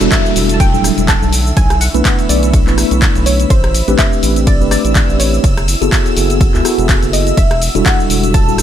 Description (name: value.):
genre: deep house.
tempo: 124 BPM.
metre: 4/4.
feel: swing 56% on 16ths.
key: E minor.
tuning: A4 = 440 Hz.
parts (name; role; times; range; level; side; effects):
soft round pluck; melody; 0.0-8.6 s; C5 to A5; -21 LUFS; equal; analog chorus, digital delay.
dark analog pad; sustained chords; 0.0-8.6 s; D3 to C#6; -26 LUFS; right 1 dB; chorus, sidechain pumping.
mellow tine electric piano; stabs; 0.0-8.6 s; F#3 to B4; -16 LUFS; equal; medium stereo tremolo, sidechain pumping.
round analog bass; bass; 0.0-8.6 s; D1 to C#2; -16 LUFS; equal; sidechain pumping.
house drum kit; drums; 0.0-8.6 s; handclaps, hi-hat, ride cymbal, rim click, shaker; -19 LUFS; left 1 dB; none.
downlifter; sound effects; 0.0-3.5 s; none; -24 LUFS; left 3 dB; none.
string machine, violins; texture; 0.0-8.6 s; E6; -27 LUFS; equal; ensemble chorus.
electronic kick drum; drums; 0.1-8.4 s; none; -13 LUFS; equal; none.
room: digital ambience.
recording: none.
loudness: -10 LUFS.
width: side -10 dB against mid.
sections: 0.0-8.6 A section.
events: none.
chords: 0.0 Em11; 1.3 Bm11; 3.5 Am11; 5.4 F#m11; 7.4 Em11.